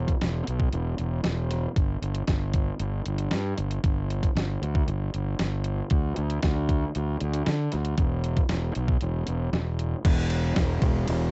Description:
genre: rock, shoegaze and dream pop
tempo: 116 BPM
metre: 4/4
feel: straight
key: unclear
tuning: A4 = 440 Hz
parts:
  - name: fuzz fingered electric bass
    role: bass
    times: 0.0-11.3 s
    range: E1 to D3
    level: -26 LUFS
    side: equal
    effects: overdrive
  - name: crisp 8-bit digital drum machine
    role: drums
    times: 0.1-11.2 s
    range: crash cymbal, hi-hat, kick drum, ride cymbal, snare drum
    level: -25 LUFS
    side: equal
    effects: overdrive, cassette tape
room: little or no reverb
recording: home recording on cassette, nothing above 8.0 kHz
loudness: -24 LUFS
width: side -38 dB against mid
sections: 0.0-10.1 A section; 10.1-11.3 A section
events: none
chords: none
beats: 0.21 0.73 1.25 | 1.77 2.29 2.81 3.33 | 3.84 4.36 4.88 5.40 | 5.92 6.43 6.95 7.47 | 7.99 8.50 9.02 9.54 | 10.05 10.57 11.08

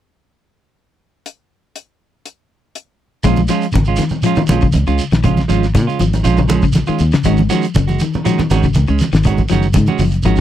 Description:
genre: afrobeat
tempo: 120 BPM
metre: 4/4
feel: straight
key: Bb minor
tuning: A4 = 443 Hz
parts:
  - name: damped 70s drum kit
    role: drums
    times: 1.3-10.4 s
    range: hi-hat, kick drum, snare drum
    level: -18 LUFS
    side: left 1 dB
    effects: none
  - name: electric guitar at the edge of break-up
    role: arpeggios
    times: 3.2-10.4 s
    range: Db3 to Ab3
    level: -19 LUFS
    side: left 8 dB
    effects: none
  - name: semi-hollow electric guitar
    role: stabs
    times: 3.2-10.4 s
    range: Eb3 to Gb4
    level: -18 LUFS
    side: right 9 dB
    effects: none
  - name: congas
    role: percussion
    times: 3.2-10.4 s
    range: none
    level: -19 LUFS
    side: right 2 dB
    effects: none
  - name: shekere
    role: percussion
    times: 3.2-10.4 s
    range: none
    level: -24 LUFS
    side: right 3 dB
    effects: none
  - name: fingered electric bass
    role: bass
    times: 3.3-10.4 s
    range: Gb1 to Bb2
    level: -16 LUFS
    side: equal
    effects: none
room: little or no reverb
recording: dry, close 1970s-style studio recording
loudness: -12 LUFS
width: side -11 dB against mid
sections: 1.3-3.3 A section; 3.3-10.4 B section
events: none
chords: 1.3 N.C.; 3.3 Bbm7; 7.3 Ab7sus4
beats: | 1.25 1.75 2.25 2.75 | 3.25 3.75 4.25 4.75 | 5.25 5.75 6.25 6.75 | 7.25 7.75 8.25 8.75 | 9.25 9.75 10.25

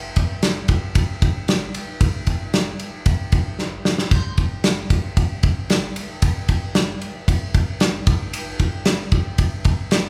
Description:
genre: indie pop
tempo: 114 BPM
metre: 4/4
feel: straight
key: none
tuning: none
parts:
  - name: loose indie drum kit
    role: drums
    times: 0.2-10.0 s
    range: kick drum, ride cymbal, snare drum, splash cymbal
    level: -21 LUFS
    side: equal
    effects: none
room: moderate recital hall reverb, RT60 1.6 s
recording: recorded in a church or concert hall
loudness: -21 LUFS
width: mono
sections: 0.0-10.1 A section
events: drum fill 3.6-4.1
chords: none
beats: 0.43 0.96 1.49 | 2.01 2.54 3.06 3.59 | 4.12 4.65 5.17 5.70 | 6.23 6.75 7.28 7.81 | 8.34 8.86 9.39 9.92

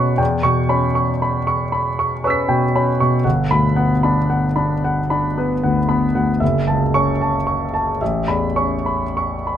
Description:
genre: classical, impressionist solo piano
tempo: 32-40 BPM (dotted quarters)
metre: 6/8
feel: rubato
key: unclear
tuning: A4 = 442 Hz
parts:
  - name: clear grand piano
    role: solo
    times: 0.0-9.6 s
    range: F#1 to B6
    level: -16 LUFS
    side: equal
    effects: none
room: little or no reverb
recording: close, detailed microphones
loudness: -16 LUFS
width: side -10 dB against mid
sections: 0.0-9.6 A section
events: none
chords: 0.2 Em6; 3.2 Gmaj7; 6.4 F#m7; 8.0 Aadd9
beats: | 0.20 1.73 | 3.25 4.83 | 6.41 8.01

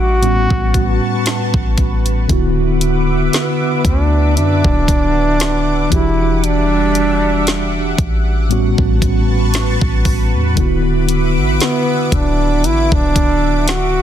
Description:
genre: contemporary R&B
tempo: 58 BPM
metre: 4/4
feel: swing 54% on 16ths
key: D major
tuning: A4 = 441 Hz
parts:
  - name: warm trombone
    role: melody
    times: 0.0-14.0 s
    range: B3 to F#4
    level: -18 LUFS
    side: right 1 dB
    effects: ping-pong delay
  - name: mellow tine electric piano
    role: accompaniment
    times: 0.0-14.0 s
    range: A2 to G4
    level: -18 LUFS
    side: equal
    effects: medium stereo tremolo
  - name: lush unison pad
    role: sustained chords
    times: 0.0-14.0 s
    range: G3 to D6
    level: -23 LUFS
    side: equal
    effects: chorus, phaser
  - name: warm 808-style bass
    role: bass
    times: 0.0-14.0 s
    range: D1 to F#2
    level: -17 LUFS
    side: equal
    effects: none
  - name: smooth R&B drum kit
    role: drums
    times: 0.2-13.9 s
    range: hi-hat, kick drum, snare drum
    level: -18 LUFS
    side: equal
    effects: none
  - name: large celesta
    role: texture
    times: 5.4-10.6 s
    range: C#6 to D6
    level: -35 LUFS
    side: equal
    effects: none
room: digital ambience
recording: dense, heavily limited modern master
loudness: -12 LUFS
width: side -10 dB against mid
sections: 0.0-14.0 A section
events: none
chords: 0.2 A13; 2.3 D69; 5.9 Em9; 8.5 A13; 10.6 D69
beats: 0.23 1.26 | 2.30 3.33 4.37 5.40 | 6.43 7.47 8.50 9.54 | 10.57 11.61 12.64 13.68

